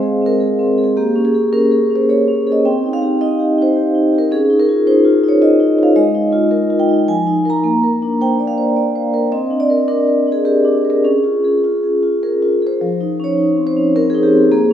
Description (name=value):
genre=classical, contemporary piece for solo vibraphone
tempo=107 BPM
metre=3/4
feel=rubato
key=F minor from 6.0 s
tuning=A4 = 441 Hz
part: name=vibraphone with soft mallets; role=solo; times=0.0-14.7 s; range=F3 to Bb5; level=-12 LUFS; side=equal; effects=none
room=wet recital hall reverb, RT60 1.7 s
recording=heard from further back in the room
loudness=-12 LUFS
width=side -10 dB against mid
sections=0.0-12.8 A section; 12.8-14.7 B section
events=none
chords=0.0 Abadd9; 1.0 Bbm7; 2.6 Cm; 4.3 Dbadd9; 6.0 Absus2; 7.1 Fm7; 7.6 Bbadd9; 9.3 Csus2; 11.0 Db; 12.8 F5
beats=0.41 | 0.97 1.53 2.09 | 2.65 3.21 3.77 | 4.32 4.88 5.43 | 5.97 6.52 7.08 | 7.64 8.21 8.77 | 9.32 9.89 10.46 | 11.04 11.64 12.22 | 12.81 13.38 13.95 | 14.51